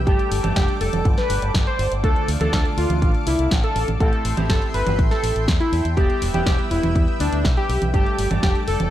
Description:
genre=italo disco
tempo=122 BPM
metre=4/4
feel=straight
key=A minor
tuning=A4 = 439 Hz
part: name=lush unison pad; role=sustained chords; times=0.0-8.9 s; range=A4 to E6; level=-31 LUFS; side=left 1 dB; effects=chorus
part: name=electric guitar with an envelope filter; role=stabs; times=0.0-8.9 s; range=G2 to A4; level=-30 LUFS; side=right 2 dB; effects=analog chorus
part: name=fingered electric bass with an envelope filter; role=bass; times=0.0-8.9 s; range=E1 to E2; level=-24 LUFS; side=equal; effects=none
part: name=wide unison lead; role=melody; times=0.1-8.9 s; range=D4 to C5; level=-24 LUFS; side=equal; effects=digital delay
part: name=electronic kick drum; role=drums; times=0.1-8.5 s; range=none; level=-20 LUFS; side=equal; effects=studio ambience
part: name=house drum kit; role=drums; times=0.1-8.9 s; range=congas, hi-hat, snare drum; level=-26 LUFS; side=right 1 dB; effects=studio ambience
room=light reverb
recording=dark, warm production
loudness=-18 LUFS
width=side -12 dB against mid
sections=0.0-8.9 A section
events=none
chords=0.1 Gsus2; 2.0 Dm; 4.0 Am7; 6.0 Em; 7.9 Gsus2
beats=| 0.07 0.56 1.05 1.54 | 2.04 2.53 3.02 3.51 | 4.00 4.50 4.99 5.48 | 5.97 6.46 6.96 7.45 | 7.94 8.43

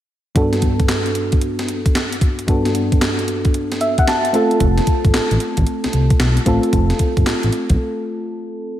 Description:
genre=R&B, new jack swing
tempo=113 BPM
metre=4/4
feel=swing 65% on 16ths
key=G major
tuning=A4 = 440 Hz
part: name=mellow FM electric piano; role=accompaniment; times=0.3-8.8 s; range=G2 to A5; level=-19 LUFS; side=equal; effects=chorus
part: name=gated 80s digital drum machine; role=drums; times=0.4-7.8 s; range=handclaps, hi-hat, kick drum, snare drum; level=-18 LUFS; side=equal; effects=gated reverb, gated reverb snare, overdrive
part: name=smooth synth bass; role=bass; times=4.6-7.8 s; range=F1 to C2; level=-17 LUFS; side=equal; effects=none
room=moderate lush hall reverb, RT60 1.8 s, digital ambience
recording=dreamy mix soaked in reverb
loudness=-15 LUFS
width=side -12 dB against mid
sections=0.4-8.8 A section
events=FM electric piano fill 3.5-4.6; break 7.8-8.8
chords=0.4 Gmaj7; 4.3 F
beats=| 0.36 0.89 1.42 1.95 | 2.48 3.01 3.54 4.07 | 4.60 5.13 5.67 6.20 | 6.73 7.26 7.79 8.32

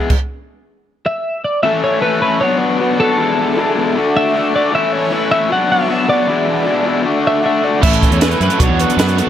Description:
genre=indie rock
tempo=156 BPM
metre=4/4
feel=straight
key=A major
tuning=A4 = 440 Hz
part: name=raw garage guitar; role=riff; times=0.0-9.3 s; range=E2 to A4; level=-16 LUFS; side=left 4 dB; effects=overdrive
part: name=compact cocktail drum kit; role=drums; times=0.1-0.2, 7.8-9.3 s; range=crash cymbal, hi-hat, kick drum, snare drum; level=-15 LUFS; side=right 1 dB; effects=none
part: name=twelve-string electric guitar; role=melody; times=1.1-9.3 s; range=A4 to F#5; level=-17 LUFS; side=equal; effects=analog delay
part: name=brassy analog pad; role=sustained chords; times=1.7-9.3 s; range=A4 to D6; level=-27 LUFS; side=right 3 dB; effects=chorus
part: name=glockenspiel with soft plastic mallets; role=second line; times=7.8-9.3 s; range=B5 to C#6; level=-27 LUFS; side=right 3 dB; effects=none
part: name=biting overdriven guitar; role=riff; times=7.8-9.3 s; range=E3 to A4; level=-21 LUFS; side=right 16 dB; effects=analog chorus
part: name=fuzz fingered electric bass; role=bass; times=7.8-9.3 s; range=A1 to F#2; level=-17 LUFS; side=right 1 dB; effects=overdrive
room=light reverb, studio reverb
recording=none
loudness=-12 LUFS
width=side -10 dB against mid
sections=0.0-1.7 A section; 1.7-9.3 B section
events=stop 0.1-1.7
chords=0.0 E; 1.7 Aadd9; 2.4 Bmadd9; 3.2 E7sus4; 4.0 D; 4.7 Aadd9; 5.5 Bmadd9; 6.3 E7sus4; 7.1 D; 7.8 Aadd9; 8.6 Bmadd9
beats=| 0.10 0.49 0.88 1.26 | 1.65 2.04 2.43 2.81 | 3.20 3.58 3.97 4.36 | 4.74 5.13 5.51 5.90 | 6.28 6.67 7.05 7.44 | 7.83 8.21 8.60 8.98

